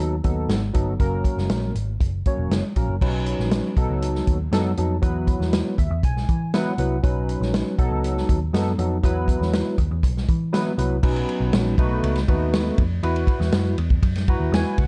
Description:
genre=uptempo 1960s-style soul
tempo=120 BPM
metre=4/4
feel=straight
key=B major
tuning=A4 = 440 Hz
part: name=barky tine electric piano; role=accompaniment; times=0.0-14.9 s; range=F#3 to A#5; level=-28 LUFS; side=equal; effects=analog chorus
part: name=vintage muted picked electric bass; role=bass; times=0.0-14.9 s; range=E1 to E3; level=-26 LUFS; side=equal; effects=none
part: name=vintage drum kit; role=drums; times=0.2-14.9 s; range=crash cymbal, hi-hat, kick drum, ride cymbal, snare drum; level=-25 LUFS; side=equal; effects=none
room=light reverb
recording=dark, warm production, nothing above 10.4 kHz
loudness=-22 LUFS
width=mono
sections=0.0-3.0 A section; 3.0-11.0 B section; 11.0-14.9 C section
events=tine electric piano fill 5.5-7.0, 14.0-14.9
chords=0.0 B7; 1.0 F#; 3.0 Badd9; 3.8 B7; 5.0 Esus2; 7.0 Badd9; 7.8 B7; 9.0 Esus2; 11.0 Badd9; 11.8 B7; 13.0 Esus2

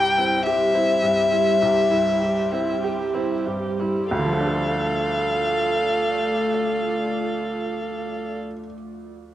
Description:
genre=neoclassical piano and strings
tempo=46-54 BPM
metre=4/4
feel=rubato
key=D minor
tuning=A4 = 440 Hz
part: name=dark violin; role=melody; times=0.0-8.4 s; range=E5 to G5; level=-22 LUFS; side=left 3 dB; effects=cassette tape, plate reverb
part: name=dark viola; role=accompaniment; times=0.0-8.4 s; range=E4 to A4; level=-27 LUFS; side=right 3 dB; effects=cassette tape, plate reverb
part: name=felt-muted upright piano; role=accompaniment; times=0.0-9.3 s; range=C2 to A4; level=-26 LUFS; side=right 2 dB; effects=cassette tape, plate reverb
part: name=evolving wavetable pad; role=sustained chords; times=0.0-8.4 s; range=G3 to D5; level=-30 LUFS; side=right 1 dB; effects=chorus, built-in reverb, cassette tape, plate reverb
room=moderate studio reverb, RT60 0.6 s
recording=home recording on cassette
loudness=-20 LUFS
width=side -12 dB against mid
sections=0.0-4.1 A section; 4.1-9.2 B section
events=slowing down 0.0-4.1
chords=0.0 C; 4.1 Dm

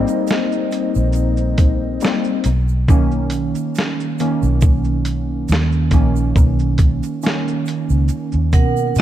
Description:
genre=lo-fi hip hop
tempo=69 BPM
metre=4/4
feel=swing 55% on 16ths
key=unclear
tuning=A4 = 442 Hz
part: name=warm analog keys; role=accompaniment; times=0.0-9.0 s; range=D#3 to Eb5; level=-20 LUFS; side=equal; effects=chorus, cassette tape
part: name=vintage muted fingered electric bass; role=bass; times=0.0-9.0 s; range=Bb1 to B2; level=-18 LUFS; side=equal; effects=none
part: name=boom bap sampler-style drum kit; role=drums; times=0.1-9.0 s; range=hi-hat, kick drum, shaker, snare drum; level=-17 LUFS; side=equal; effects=vintage 12-bit sampler grit
part: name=egg shaker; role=percussion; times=0.1-9.0 s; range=none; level=-40 LUFS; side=right 8 dB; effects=none
part: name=vibraphone with hard mallets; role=second line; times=8.5-9.0 s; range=A#4 to F#5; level=-19 LUFS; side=right 6 dB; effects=none
room=light reverb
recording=dark, warm production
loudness=-15 LUFS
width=side -12 dB against mid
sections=0.0-9.0 A section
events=synth keys solo 0.0-9.0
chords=0.0 Abmaj9 (rootless); 2.4 Bmaj9

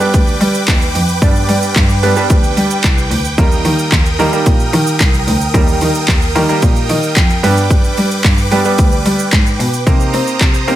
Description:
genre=dance-pop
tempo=111 BPM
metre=4/4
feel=straight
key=unclear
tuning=A4 = 440 Hz
part: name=warm concert grand piano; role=accompaniment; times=0.0-10.8 s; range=G3 to B5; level=-18 LUFS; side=right 3 dB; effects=sidechain pumping
part: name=supersaw chords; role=sustained chords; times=0.0-10.8 s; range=Bb4 to Eb6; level=-20 LUFS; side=right 1 dB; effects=phaser, sidechain pumping
part: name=rich cello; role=bass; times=0.0-10.8 s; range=C2 to C4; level=-15 LUFS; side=equal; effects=sidechain pumping
part: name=pop drum kit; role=drums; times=0.0-10.8 s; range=handclaps, hi-hat, kick drum, shaker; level=-13 LUFS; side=equal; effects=overdrive
room=little or no reverb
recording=none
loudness=-10 LUFS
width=side -13 dB against mid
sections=0.0-10.8 A section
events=grand piano fill 6.6-7.7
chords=0.0 G; 3.4 Eb; 7.4 G; 9.9 Cm7

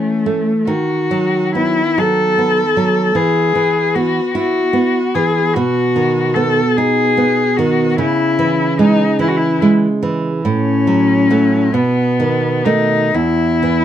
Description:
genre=romantic duo for cello and classical guitar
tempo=40-52 BPM (dotted quarters)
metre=6/8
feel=rubato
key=unclear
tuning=A4 = 440 Hz
part: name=rich cello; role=melody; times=0.0-13.8 s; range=A3 to A4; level=-15 LUFS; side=left 3 dB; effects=none
part: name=nylon-string guitar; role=accompaniment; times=0.0-13.8 s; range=E2 to E4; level=-16 LUFS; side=right 3 dB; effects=none
room=light reverb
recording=dark, warm production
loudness=-12 LUFS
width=side -10 dB against mid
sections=0.0-13.8 A section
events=none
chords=0.0 A/E; 0.7 B7/D#; 3.2 E; 5.6 B; 8.0 C#m; 10.5 F#m/A; 11.7 B7; 13.1 N.C.

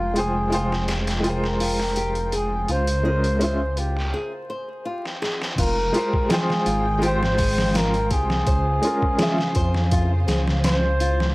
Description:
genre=trip hop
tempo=83 BPM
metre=4/4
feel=straight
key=F minor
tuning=A4 = 440 Hz
part: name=trumpet with bucket mute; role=melody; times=0.0-11.3 s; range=F4 to C5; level=-26 LUFS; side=equal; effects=tape echo
part: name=muted studio string section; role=sustained chords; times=0.0-11.3 s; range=Db3 to G5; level=-32 LUFS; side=equal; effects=none
part: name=dark detuned saw bass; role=bass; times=0.0-11.3 s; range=F1 to F2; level=-24 LUFS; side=equal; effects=none
part: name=felt-muted upright piano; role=accompaniment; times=0.1-9.4 s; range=Ab3 to G5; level=-26 LUFS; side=equal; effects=tremolo
part: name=nylon-string guitar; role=arpeggios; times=0.2-11.2 s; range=F4 to C5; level=-32 LUFS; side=left 1 dB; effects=tape echo
part: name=trip hop sampler-style drum kit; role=drums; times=0.2-11.3 s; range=crash cymbal, hi-hat, kick drum, snare drum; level=-25 LUFS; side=equal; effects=high-pass filter on hats, small room ambience, high-pass filter on snare, high-pass filter on kick, high-pass filter on cymbals
room=small room ambience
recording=dry, gritty hardware recording, vinyl crackle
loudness=-19 LUFS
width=side -21 dB against mid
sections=0.0-5.6 A section; 5.6-11.3 B section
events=break 4.1-5.6; drum fill 5.0-5.6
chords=0.0 Fmadd9; 2.7 Dbmaj7; 5.6 Fmadd9; 8.5 Dbmaj7

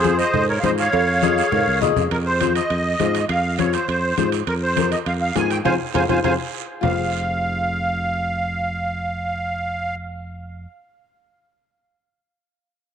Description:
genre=latin, cumbia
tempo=203 BPM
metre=4/4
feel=straight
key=F minor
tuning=A4 = 440 Hz
part: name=musette accordion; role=melody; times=0.0-10.0 s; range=Ab4 to Ab5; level=-22 LUFS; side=right 2 dB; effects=none
part: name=nylon-string guitar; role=accompaniment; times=0.0-10.7 s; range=F4 to Eb5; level=-26 LUFS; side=left 13 dB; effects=none
part: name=fingered electric bass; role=bass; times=0.0-10.7 s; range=F1 to Ab2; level=-25 LUFS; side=right 1 dB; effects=none
part: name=congas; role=percussion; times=0.0-6.9 s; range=none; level=-26 LUFS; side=left 8 dB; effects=none
part: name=cowbell and timbales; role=percussion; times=0.0-6.9 s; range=none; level=-29 LUFS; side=right 14 dB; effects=none
part: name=guiro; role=percussion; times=0.0-6.9 s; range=none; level=-33 LUFS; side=right 14 dB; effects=none
part: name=warm clarinet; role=second line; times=1.2-2.1 s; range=Ab4 to Bb4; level=-26 LUFS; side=left 8 dB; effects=none
room=moderate spring reverb, RT60 2.8 s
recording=1960s-style stereo with parts hard left and right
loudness=-18 LUFS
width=side -8 dB against mid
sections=0.0-2.1 A section; 2.1-6.8 B section; 6.8-9.2 C section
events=drum fill 1.2-2.1, 5.9-6.8; band accent 5.7-6.8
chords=0.0 Fm

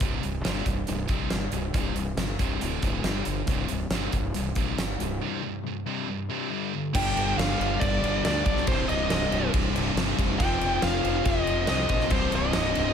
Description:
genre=hard rock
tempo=139 BPM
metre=4/4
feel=straight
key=C minor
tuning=A4 = 440 Hz
part: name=overdriven semi-hollow guitar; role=riff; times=0.0-12.9 s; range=C2 to G3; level=-32 LUFS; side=left 11 dB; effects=spring reverb
part: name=scooped high-gain guitar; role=riff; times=0.0-12.9 s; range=C2 to G3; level=-32 LUFS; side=right 12 dB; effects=distortion
part: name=fuzz fingered electric bass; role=bass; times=0.0-12.9 s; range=C1 to D2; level=-31 LUFS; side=equal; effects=overdrive
part: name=huge arena drum kit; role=drums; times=0.0-12.9 s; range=crash cymbal, hi-hat, kick drum, snare drum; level=-28 LUFS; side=equal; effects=none
part: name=distorted electric guitar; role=riff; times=6.9-12.9 s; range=C2 to G3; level=-32 LUFS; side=equal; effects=overdrive
part: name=bluesy overdriven lead guitar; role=melody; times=7.0-12.9 s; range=C5 to G5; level=-28 LUFS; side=equal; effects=distortion, slapback echo, plate reverb
room=light reverb, small room ambience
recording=none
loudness=-24 LUFS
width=side -8 dB against mid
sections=0.0-6.9 A section; 6.9-12.9 B section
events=break 5.2-6.9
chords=0.0 C5; 2.6 D5; 3.0 G5; 3.5 C5; 6.5 G5; 8.7 Cm; 10.4 F5; 12.1 Cm

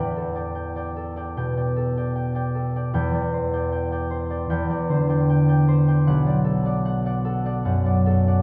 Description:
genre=classical, solo harp piece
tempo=76 BPM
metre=4/4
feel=rubato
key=E minor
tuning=A4 = 441 Hz
part: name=concert harp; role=solo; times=0.0-8.4 s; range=B1 to G5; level=-22 LUFS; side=equal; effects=none
room=wet concert hall reverb, RT60 2.0 s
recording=heard from further back in the room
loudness=-23 LUFS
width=mono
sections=0.0-8.4 A section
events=none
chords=0.0 Em11; 2.9 D9sus4/E; 6.1 Bm7

